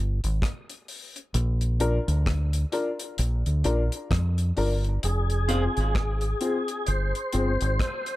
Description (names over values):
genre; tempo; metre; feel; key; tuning
dub reggae; 65 BPM; 4/4; swing 59% on 16ths; F dorian; A4 = 440 Hz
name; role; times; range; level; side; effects
deep dub fingered electric bass; bass; 0.0-7.8 s; F1 to F2; -24 LUFS; equal; none
deep reggae drum kit; drums; 0.2-8.2 s; hi-hat, kick drum, rim click; -30 LUFS; equal; none
warm upright piano; stabs; 1.8-7.5 s; C4 to Bb4; -30 LUFS; left 3 dB; tape echo
tonewheel organ; melody; 5.0-8.2 s; Ab4 to C5; -30 LUFS; left 1 dB; overdrive, chorus vibrato, slow rotary speaker, tape echo
semi-hollow electric guitar; accompaniment; 5.5-5.6 s; F4 to F5; -34 LUFS; right 5 dB; tape echo
room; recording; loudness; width
light reverb, small room reverb; none; -23 LUFS; side -16 dB against mid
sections
0.0-5.0 A section; 5.0-8.2 B section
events
break 0.0-5.0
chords
0.0 N.C.; 1.3 Bb; 5.0 Fm